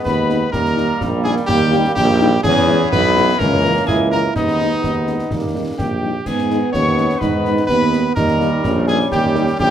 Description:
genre	military-style march for wind band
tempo	126 BPM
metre	2/4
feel	straight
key	G# minor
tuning	A4 = 442 Hz
part	warm cornet	melody	0.0-9.7 s	D#4 to C#5	-21 LUFS	equal	none
part	mellow euphonium	second line	0.0-9.7 s	G#3 to E4	-22 LUFS	right 2 dB	none
part	mellow piccolo	second line	0.0-9.7 s	D#5 to C#6	-23 LUFS	left 4 dB	none
part	bright trombone section	sustained chords	0.0-9.7 s	D#3 to B3	-25 LUFS	equal	none
part	warm tuba	bass	0.1-9.7 s	A#1 to G#2	-19 LUFS	right 2 dB	none
part	concert snare drum, concert bass drum and clash cymbals	drums	0.1-9.7 s	none	-25 LUFS	left 1 dB	none
part	mellow French horn section	accompaniment	0.3-9.4 s	E3 to E4	-24 LUFS	left 7 dB	none
room	little or no reverb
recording	minimal, uncompressed stereo recording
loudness	-14 LUFS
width	side -9 dB against mid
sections	0.0-9.7 A section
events	none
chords	0.0 G#m; 0.5 D#; 2.4 E; 3.4 A#dim/C#; 4.4 G#m/D#; 5.3 D#; 6.3 G#m; 8.2 D#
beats	0.06 | 0.54 1.02 | 1.49 1.97 | 2.45 2.92 | 3.40 3.88 | 4.35 4.83 | 5.31 5.78 | 6.26 6.74 | 7.21 7.69 | 8.17 8.64 | 9.12 9.59

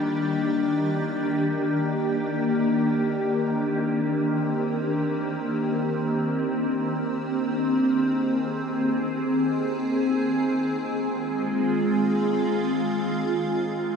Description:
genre	ambient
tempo	free time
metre	none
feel	none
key	C minor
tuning	A4 = 440 Hz
part	evolving wavetable pad	solo	0.0-14.0 s	Eb3 to Ab4	-22 LUFS	equal	ensemble chorus, built-in reverb, phaser, tape echo
room	wet huge ambient reverb, RT60 8.1 s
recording	dreamy mix soaked in reverb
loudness	-22 LUFS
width	side -6 dB against mid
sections	0.0-1.5 A section; 1.5-14.0 B section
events	none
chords	0.0 Ebmaj7; 1.5 Cm9; 5.8 Abmaj9; 10.0 Fm7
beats	free time

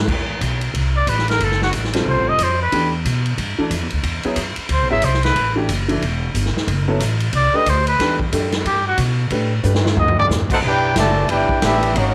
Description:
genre	jazz, big band swing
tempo	182 BPM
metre	4/4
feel	swing 61% on 8ths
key	G major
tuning	A4 = 440 Hz
part	upright bass	bass	0.0-12.1 s	E1 to B2	-23 LUFS	equal	none
part	swinging big-band drum kit	drums	0.1-12.1 s	crash cymbal, hi-hat, kick drum, ride cymbal, snare drum, toms	-25 LUFS	equal	none
part	warm trumpet	melody	1.0-10.3 s	F#4 to E5	-21 LUFS	equal	slapback echo
part	clear upright piano	accompaniment	1.9-9.8 s	E3 to B4	-25 LUFS	equal	none
part	mellow trumpet section	melody	10.5-12.1 s	Bb3 to A5	-20 LUFS	equal	none
part	bright trombone section	second line	10.5-12.1 s	D3 to G4	-26 LUFS	equal	none
room	light reverb, small room ambience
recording	none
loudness	-18 LUFS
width	mono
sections	0.1-10.6 A section; 10.6-12.1 B section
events	trumpet solo 0.0-10.6; drum fill 9.6-10.3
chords	0.1 Amadd9; 1.4 F#dim; 2.1 Fadd9; 2.7 Em7; 4.0 E(b13); 5.4 A5; 6.7 F#madd11; 7.3 Cm69; 8.0 Em11; 9.3 A9sus4; 10.0 D5; 10.6 G6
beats	| 0.08 0.41 0.74 1.07 | 1.40 1.73 2.06 2.39 | 2.72 3.05 3.38 3.71 | 4.04 4.37 4.70 5.03 | 5.36 5.69 6.02 6.35 | 6.68 7.01 7.34 7.67 | 8.00 8.33 8.66 8.99 | 9.32 9.65 9.98 10.31 | 10.64 10.97 11.30 11.63 | 11.96

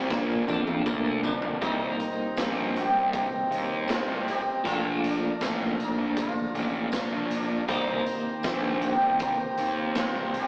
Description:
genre	psychedelic rock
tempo	79 BPM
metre	4/4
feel	straight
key	C dorian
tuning	A4 = 441 Hz
part	twelve-string electric guitar	riff	0.0-10.5 s	Bb2 to G4	-31 LUFS	equal	tremolo
part	fuzz picked electric bass	bass	0.0-10.5 s	A1 to F2	-30 LUFS	equal	overdrive
part	overdriven combo organ	sustained chords	0.1-10.5 s	F3 to Bb5	-34 LUFS	equal	none
part	raw garage drum kit	drums	0.1-10.5 s	hi-hat, kick drum, snare drum, toms	-32 LUFS	equal	none
part	tambourine	percussion	0.1-10.1 s	none	-50 LUFS	right 1 dB	none
part	sitar	melody	1.2-10.5 s	D4 to G4	-30 LUFS	equal	none
room	moderate stone room reverb, RT60 1.3 s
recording	rough rehearsal-room recording, tube saturation, AM radio sound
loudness	-24 LUFS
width	side -31 dB against mid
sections	0.0-1.6 A section; 1.6-10.5 B section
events	drum fill 0.1-1.6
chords	0.1 Bb; 1.6 Cm7; 4.6 Bbmaj7; 7.7 Cm7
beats	0.10 0.85 | 1.61 2.37 3.12 3.88 | 4.64 5.40 6.16 6.92 | 7.68 8.44 9.20 9.96

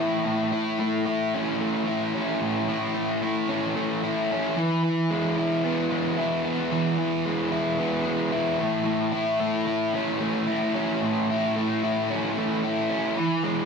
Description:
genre	rock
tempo	112 BPM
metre	4/4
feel	straight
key	unclear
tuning	A4 = 440 Hz
part	overdriven electric guitar	solo	0.0-13.7 s	A2 to E4	-23 LUFS	equal	none
room	moderate studio reverb, RT60 0.5 s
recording	band playing live in one room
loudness	-23 LUFS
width	side -5 dB against mid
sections	0.0-13.2 A section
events	none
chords	0.0 A; 4.6 E; 8.6 A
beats	| 0.27 0.81 1.34 1.88 | 2.42 2.96 3.50 4.03 | 4.57 5.11 5.64 6.18 | 6.72 7.25 7.79 8.33 | 8.86 9.40 9.94 10.47 | 11.01 11.55 12.09 12.63 | 13.17

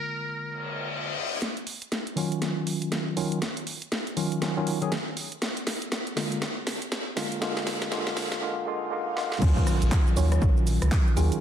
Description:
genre	deep house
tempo	120 BPM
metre	4/4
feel	swing 60% on 16ths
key	unclear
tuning	A4 = 441 Hz
part	trumpet with metal mute	melody	0.0-0.9 s	Bb4	-33 LUFS	equal	vintage 12-bit sampler grit, digital delay
part	tine electric piano	stabs	0.0-11.4 s	D3 to Ab4	-29 LUFS	equal	medium stereo tremolo, vintage 12-bit sampler grit, sidechain pumping, digital delay
part	reverse cymbal, swell and downlifter	sound effects	0.6-1.4, 8.6-11.4 s	none	-34 LUFS	left 2 dB	none
part	house drum kit	drums	1.4-11.4 s	crash cymbal, handclaps, hi-hat, rim click, shaker, snare drum	-31 LUFS	equal	soft clipping on snare, high-pass filter on snare, high-pass filter on hats, high-pass filter on cymbals, high-pass filter on perc, high-pass filter on room
part	sub bass with octave	bass	9.4-11.3 s	Bb1 to Eb2	-23 LUFS	equal	sidechain pumping
part	electronic kick drum	drums	9.4-11.0 s	none	-23 LUFS	equal	overdrive
part	thumb-piano-like synth pluck	melody	10.2-11.4 s	Ab4 to Db5	-35 LUFS	right 2 dB	chorus, phaser
room	light reverb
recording	dense, heavily limited modern master, high-pass filter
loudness	-25 LUFS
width	side -9 dB against mid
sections	0.0-1.4 A section; 1.4-9.4 B section; 9.4-11.4 C section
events	filter sweep 0.0-1.4; reverse cymbal 0.6-1.4; build-up 1.4-9.4; drum fill 1.4-8.4, 9.2; swell 8.6-9.4; drop 9.4-11.4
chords	0.0 Bb7; 1.4 Ebm9; 5.2 Bb7; 9.4 Ebm9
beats	0.42 0.92 | 1.42 1.92 2.42 2.92 | 3.42 3.92 4.42 4.92 | 5.42 5.92 6.42 6.92 | 7.42 7.92 8.42 8.92 | 9.42 9.92 10.42 10.92

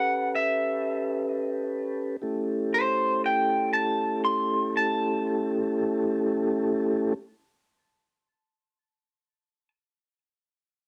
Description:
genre	blues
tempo	40 BPM (dotted quarters)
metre	12/8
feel	straight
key	A mixolydian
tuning	A4 = 440 Hz
part	electric guitar through a small old amp	melody	0.0-9.7 s	C5 to C6	-28 LUFS	equal	none
part	mellow tonewheel organ	sustained chords	0.0-7.1 s	A3 to B4	-29 LUFS	equal	slow rotary speaker, cassette tape
room	light reverb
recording	home recording on cassette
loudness	-26 LUFS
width	mono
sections	0.0-2.2 A section; 2.2-8.2 B section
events	slowing down 0.0-2.2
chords	0.0 A9; 2.2 A7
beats	0.76 | 2.20 3.71 5.22 6.72

